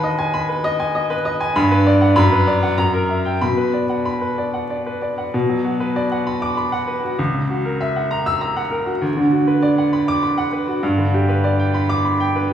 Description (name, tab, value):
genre	classical, virtuoso piano study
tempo	98 BPM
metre	3/4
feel	rubato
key	B minor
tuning	A4 = 439 Hz
part	clear baby grand piano	solo	0.0-12.5 s	C#2 to E6	-16 LUFS	equal	none
room	wet recital hall reverb, RT60 1.4 s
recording	heard from further back in the room, vinyl crackle, studio reverb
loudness	-16 LUFS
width	side -9 dB against mid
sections	0.0-5.3 A section; 5.3-12.5 B section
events	none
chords	0.0 Abm/Eb; 1.6 Gmaj7; 2.2 Bm/F#; 2.8 F#7b9; 3.4 Bm; 7.2 F#7/C#; 9.0 Bm/D; 10.8 G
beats	0.34 0.94 | 1.55 2.16 2.78 | 3.41 4.06 4.70 | 5.34 5.96 6.57 | 7.18 7.80 8.41 | 9.01 9.62 10.22 | 10.83 11.44 12.04